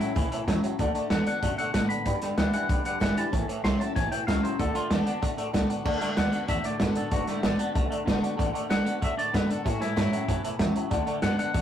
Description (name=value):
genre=rockabilly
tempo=190 BPM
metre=4/4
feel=straight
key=D major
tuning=A4 = 441 Hz
part: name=twangy electric guitar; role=melody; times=0.0-11.6 s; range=D4 to C6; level=-32 LUFS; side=left 2 dB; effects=none
part: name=honky-tonk upright piano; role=accompaniment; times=0.0-11.6 s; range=C#5 to B5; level=-34 LUFS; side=left 2 dB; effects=none
part: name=picked steel-string acoustic guitar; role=accompaniment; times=0.0-11.6 s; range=G2 to G4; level=-36 LUFS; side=left 4 dB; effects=none
part: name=twangy electric guitar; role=riff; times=0.0-11.6 s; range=G2 to B3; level=-33 LUFS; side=right 2 dB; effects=phaser
part: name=upright bass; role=bass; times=0.0-11.6 s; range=F#1 to A2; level=-33 LUFS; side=equal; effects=none
part: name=vintage drum kit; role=drums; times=0.0-11.6 s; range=crash cymbal, hi-hat, kick drum, snare drum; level=-27 LUFS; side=right 1 dB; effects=none
room=light reverb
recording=rough rehearsal-room recording, warm saturation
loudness=-24 LUFS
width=side -10 dB against mid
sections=0.0-5.9 A section; 5.9-11.6 A section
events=none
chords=0.0 A; 0.8 D; 2.1 G; 3.3 A; 4.6 D; 9.7 A7; 10.9 D